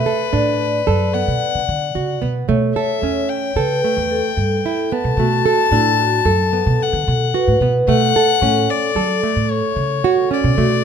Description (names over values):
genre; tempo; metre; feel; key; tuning
contemporary instrumental, chamber music in an uneven meter; 111 BPM; 5/4; straight; B minor; A4 = 440 Hz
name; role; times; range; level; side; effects
warm violin; melody; 0.0-10.8 s; B4 to A5; -20 LUFS; left 11 dB; none
vibraphone with soft mallets; second line; 0.0-10.8 s; E4 to E5; -22 LUFS; left 2 dB; none
nylon-string guitar; arpeggios; 0.0-10.8 s; A3 to A4; -20 LUFS; right 9 dB; none
upright bass; bass; 0.3-10.8 s; E2 to F#3; -20 LUFS; right 1 dB; none
room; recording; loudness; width
light reverb; close, detailed microphones; -15 LUFS; side -7 dB against mid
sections
0.0-10.8 A section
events
none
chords
0.0 Bm7; 2.5 A7; 5.2 Bm7; 7.9 Dmaj7